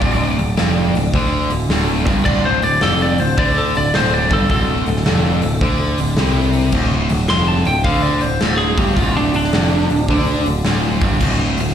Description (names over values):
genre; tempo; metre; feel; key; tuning
blues rock power trio and southern rock; 107 BPM; 4/4; swing 66% on 8ths; D minor; A4 = 440 Hz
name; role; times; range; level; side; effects
lightly driven lead guitar; melody; 0.0-10.4 s; D4 to C6; -20 LUFS; equal; slapback echo
biting overdriven guitar; riff; 0.0-11.7 s; D2 to D3; -19 LUFS; equal; slapback echo
overdriven picked electric bass; bass; 0.0-11.7 s; D1 to D2; -19 LUFS; equal; none
huge arena drum kit; drums; 0.0-11.7 s; crash cymbal, hi-hat, kick drum, snare drum; -21 LUFS; equal; none
room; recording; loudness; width
little or no reverb; live gig heard through the venue's PA, recital hall reverb; -14 LUFS; side -9 dB against mid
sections
0.0-11.7 A section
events
lead electric guitar solo 0.0-11.7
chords
0.0 Dm